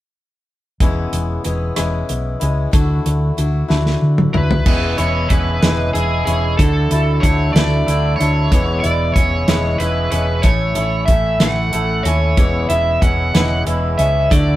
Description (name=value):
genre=folk rock and heartland rock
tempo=62 BPM (dotted quarters)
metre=6/8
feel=straight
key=E mixolydian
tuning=A4 = 441 Hz
part: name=picked swing-style acoustic guitar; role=accompaniment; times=0.8-14.6 s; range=E2 to A4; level=-24 LUFS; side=left 3 dB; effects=none
part: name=hollow-body short-scale fingered electric bass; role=bass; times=0.8-14.6 s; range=E1 to D3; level=-18 LUFS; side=equal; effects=none
part: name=damped 70s drum kit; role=drums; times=0.8-14.5 s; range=crash cymbal, hi-hat, kick drum, rim click, snare drum, toms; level=-17 LUFS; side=equal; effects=none
part: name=nasal lead guitar with a parked wah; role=melody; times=4.3-14.6 s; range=G#4 to F#5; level=-20 LUFS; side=right 1 dB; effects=overdrive
part: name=electric guitar through a small old amp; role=riff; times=4.7-14.6 s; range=E2 to E4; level=-23 LUFS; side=right 2 dB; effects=none
room=moderate stone room reverb, RT60 1.0 s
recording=band playing live in one room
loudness=-14 LUFS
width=side -15 dB against mid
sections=0.8-4.7 A section; 4.7-14.6 B section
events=drum fill 3.7-4.7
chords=0.8 E6; 2.7 Dadd9; 4.7 E6; 6.6 Dadd9; 8.5 E6; 10.4 A; 12.4 E6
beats=| 0.80 1.77 | 2.73 3.69 | 4.66 5.62 | 6.59 7.55 | 8.52 9.48 | 10.45 11.42 | 12.38 13.35 | 14.32